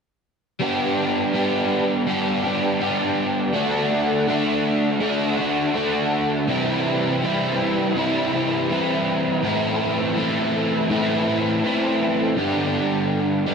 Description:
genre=rock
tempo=82 BPM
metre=4/4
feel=straight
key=G major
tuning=A4 = 441 Hz
part: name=crunchy overdriven guitar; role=solo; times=0.6-13.5 s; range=G2 to G4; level=-19 LUFS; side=equal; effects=ensemble chorus, analog delay
room=wet plate reverb, RT60 2.8 s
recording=dreamy mix soaked in reverb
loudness=-19 LUFS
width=side -6 dB against mid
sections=0.6-12.4 A section; 12.4-13.5 B section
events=none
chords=0.6 G; 3.6 D; 6.5 C; 9.4 Am; 12.4 G

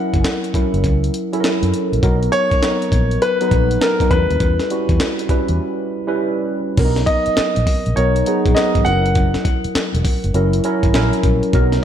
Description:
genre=R&B, new jack swing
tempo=101 BPM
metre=4/4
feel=swing 64% on 16ths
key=B major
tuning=A4 = 440 Hz
part: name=clear baby grand piano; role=melody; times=0.0-9.4 s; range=A#4 to F#5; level=-20 LUFS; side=equal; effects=slapback echo, ping-pong delay
part: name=mellow tine electric piano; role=accompaniment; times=0.0-11.8 s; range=F#3 to B4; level=-19 LUFS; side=right 1 dB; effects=wide subtle chorus
part: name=vintage muted fingered electric bass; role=bass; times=0.1-11.8 s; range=E1 to F#2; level=-19 LUFS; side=equal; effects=none
part: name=breakbeat sampler-style drum kit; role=drums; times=0.1-11.8 s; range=crash cymbal, handclaps, hi-hat, kick drum, snare drum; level=-19 LUFS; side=equal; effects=none
room=moderate lush hall reverb, RT60 1.7 s, digital ambience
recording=big arena sound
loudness=-15 LUFS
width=side -9 dB against mid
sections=0.0-6.8 A section; 6.8-11.8 B section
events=break 5.6-6.8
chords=0.0 F#7; 2.0 Bmaj7; 4.1 Em6; 6.8 Bmaj7; 8.9 F#7

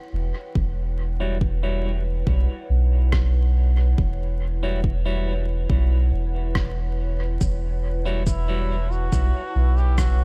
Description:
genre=ambient dub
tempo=70 BPM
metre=4/4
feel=straight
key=E dorian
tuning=A4 = 441 Hz
part: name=warbly tape-like pad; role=sustained chords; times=0.0-10.2 s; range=E4 to A5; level=-38 LUFS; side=equal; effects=chorus, built-in reverb
part: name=soft dub sub bass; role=bass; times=0.1-10.2 s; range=E1 to B1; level=-23 LUFS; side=equal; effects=tube saturation
part: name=electronic kick drum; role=drums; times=0.6-10.2 s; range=none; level=-26 LUFS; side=equal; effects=overdrive, studio reverb
part: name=clean electric guitar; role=stabs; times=1.2-8.8 s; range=G3 to C#5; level=-36 LUFS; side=equal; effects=low-pass filter, dub echo
part: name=electronic rim click and cabasa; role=drums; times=3.1-10.2 s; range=none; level=-37 LUFS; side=equal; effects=overdrive, studio reverb, dub echo
part: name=trombone with straight mute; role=melody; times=8.3-10.2 s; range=E4 to G4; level=-33 LUFS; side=equal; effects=dub echo
room=digital ambience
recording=vinyl crackle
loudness=-23 LUFS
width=mono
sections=0.0-10.2 A section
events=fade-in on ambient pad 0.0-10.2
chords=0.0 Em69

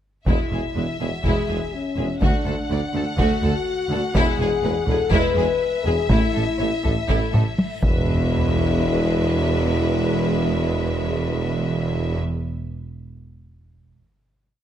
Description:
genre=cinematic, epic orchestral film score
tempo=123 BPM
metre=4/4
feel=straight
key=E mixolydian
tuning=A4 = 439 Hz
part: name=rich symphonic violin section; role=melody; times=0.3-12.2 s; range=E5 to F#5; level=-31 LUFS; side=left 4 dB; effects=none
part: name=rich symphonic violin section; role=second line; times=0.3-12.2 s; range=E4 to D5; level=-30 LUFS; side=left 2 dB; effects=none
part: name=warm symphonic viola section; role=accompaniment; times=0.3-12.2 s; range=G#3 to A3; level=-28 LUFS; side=right 2 dB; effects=none
part: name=mellow French horn section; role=sustained chords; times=0.3-12.2 s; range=C#4 to B4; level=-26 LUFS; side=left 5 dB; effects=none
part: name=clear symphonic double bass section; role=bass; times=0.3-12.2 s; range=E1 to D2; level=-27 LUFS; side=right 2 dB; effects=none
part: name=clear tuba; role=bass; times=0.3-12.2 s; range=E1 to D2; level=-28 LUFS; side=right 3 dB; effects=none
part: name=rich symphonic cello section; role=bass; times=0.3-12.2 s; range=D2 to A2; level=-26 LUFS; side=right 1 dB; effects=none
part: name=solo taiko drums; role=drums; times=0.3-8.8 s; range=none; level=-23 LUFS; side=equal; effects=none
part: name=reverse cymbal and sub drop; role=sound effects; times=7.6-10.0 s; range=none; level=-32 LUFS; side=equal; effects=none
room=light reverb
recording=close, detailed microphones, faint mains hum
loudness=-19 LUFS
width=side -10 dB against mid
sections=0.3-8.1 theme; 8.1-12.0 final hit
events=drum fill 7.3-8.1; impact 8.1-10.0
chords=0.3 E; 2.2 D; 4.2 E; 6.1 A5; 7.8 E

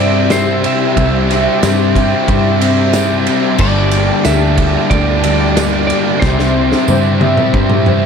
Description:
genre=rock, shoegaze and dream pop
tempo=91 BPM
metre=4/4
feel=straight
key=C mixolydian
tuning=A4 = 440 Hz
part: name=lightly driven lead guitar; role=melody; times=0.0-8.1 s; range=C5 to E5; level=-21 LUFS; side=right 1 dB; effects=slapback echo
part: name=chorused pulse-width pad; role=sustained chords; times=0.0-8.1 s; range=C5 to E6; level=-23 LUFS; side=equal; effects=none
part: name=picked twelve-string acoustic guitar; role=arpeggios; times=0.0-8.1 s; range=E3 to A4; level=-23 LUFS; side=left 11 dB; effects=ensemble chorus, slapback echo
part: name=overdriven electric guitar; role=riff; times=0.0-8.1 s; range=G2 to E4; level=-18 LUFS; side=right 10 dB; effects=reverse reverb
part: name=thick fuzz guitar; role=riff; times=0.0-8.1 s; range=G2 to C4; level=-17 LUFS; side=left 13 dB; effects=distortion, analog chorus
part: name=vintage muted picked electric bass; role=bass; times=0.0-8.0 s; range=G1 to G2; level=-16 LUFS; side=right 1 dB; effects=none
part: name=loose indie drum kit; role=drums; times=0.3-8.0 s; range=crash cymbal, kick drum, ride cymbal, snare drum, toms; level=-17 LUFS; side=right 1 dB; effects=none
part: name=tambourine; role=percussion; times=0.3-7.0 s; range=none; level=-30 LUFS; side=right 20 dB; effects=none
room=light reverb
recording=none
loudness=-10 LUFS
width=side -6 dB against mid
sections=0.0-8.1 A section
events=drum fill 6.2-8.1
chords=0.0 C; 3.6 Gmadd9; 6.2 Cadd9

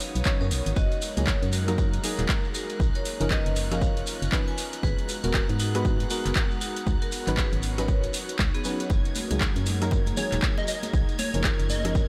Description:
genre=deep house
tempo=118 BPM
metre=4/4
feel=swing 60% on 16ths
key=F# major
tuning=A4 = 440 Hz
part: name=airy breathy pad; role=sustained chords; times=0.0-12.1 s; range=G#3 to A#5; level=-41 LUFS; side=equal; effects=chorus, phaser, sidechain pumping
part: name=deep mellow chord stab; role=stabs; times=0.0-12.1 s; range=E#3 to C#5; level=-35 LUFS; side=equal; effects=chorus, sidechain pumping, tape echo
part: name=deep house drum kit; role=drums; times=0.0-11.9 s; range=handclaps, hi-hat, rim click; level=-35 LUFS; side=equal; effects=overdrive, studio reverb
part: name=shekere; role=percussion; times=0.0-12.1 s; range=none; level=-41 LUFS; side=equal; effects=none
part: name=warbly tape-like pad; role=texture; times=0.0-12.1 s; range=B3 to B5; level=-44 LUFS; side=equal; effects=none
part: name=warm symphonic violin section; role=texture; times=0.0-12.1 s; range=D#6 to G#6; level=-46 LUFS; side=equal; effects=none
part: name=organ-like FM bass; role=bass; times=0.2-12.1 s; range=D#1 to G#2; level=-30 LUFS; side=equal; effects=sidechain pumping
part: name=electronic kick drum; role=drums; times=0.3-12.1 s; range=none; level=-28 LUFS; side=equal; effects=studio reverb
part: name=vibraphone with hard mallets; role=melody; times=0.4-8.8 s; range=B3 to G#5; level=-38 LUFS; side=equal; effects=delay
part: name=congas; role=percussion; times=8.9-11.9 s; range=none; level=-39 LUFS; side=equal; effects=sidechain pumping on perc
part: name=plucky unison lead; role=melody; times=10.2-11.9 s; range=C#5 to D#5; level=-34 LUFS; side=equal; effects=analog chorus, vintage 12-bit sampler grit, diffuse ambient delay
room=light reverb, small room reverb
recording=none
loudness=-26 LUFS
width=mono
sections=0.0-12.1 A section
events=none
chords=0.0 C#9sus4; 0.8 F#69; 2.8 Bmaj9#11; 4.6 G#m9; 6.9 C#9sus4; 8.9 F#69; 10.9 Bmaj9#11 (rootless)

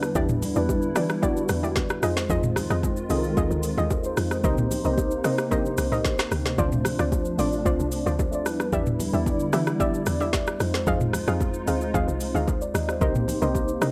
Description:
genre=amapiano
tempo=112 BPM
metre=4/4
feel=straight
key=unclear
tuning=A4 = 440 Hz
part: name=mellow tine electric piano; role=accompaniment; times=0.0-13.9 s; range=G3 to Eb5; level=-30 LUFS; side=equal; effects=phaser
part: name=hollow soft pad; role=sustained chords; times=0.0-13.9 s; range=C3 to F4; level=-37 LUFS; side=equal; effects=ensemble chorus, sidechain pumping
part: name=woody log drum bass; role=bass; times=0.0-13.9 s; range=A1 to E3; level=-31 LUFS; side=equal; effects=none
part: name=afro-pop drum kit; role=drums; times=0.0-13.9 s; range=hi-hat, kick drum, rim click, shaker, snare drum, toms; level=-30 LUFS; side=equal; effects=none
part: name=soft round pluck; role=stabs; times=0.2-13.9 s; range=E4 to F5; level=-33 LUFS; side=equal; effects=chorus, analog delay
part: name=congas and bongos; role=percussion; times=0.2-13.9 s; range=none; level=-37 LUFS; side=equal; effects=none
room=little or no reverb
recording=dry, gritty hardware recording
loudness=-25 LUFS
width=mono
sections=0.0-13.9 A section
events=none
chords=0.0 Em7; 2.0 Fm7; 4.4 Cm7; 6.6 Dm7; 8.5 Em7; 10.6 Fm7; 13.0 Cm7

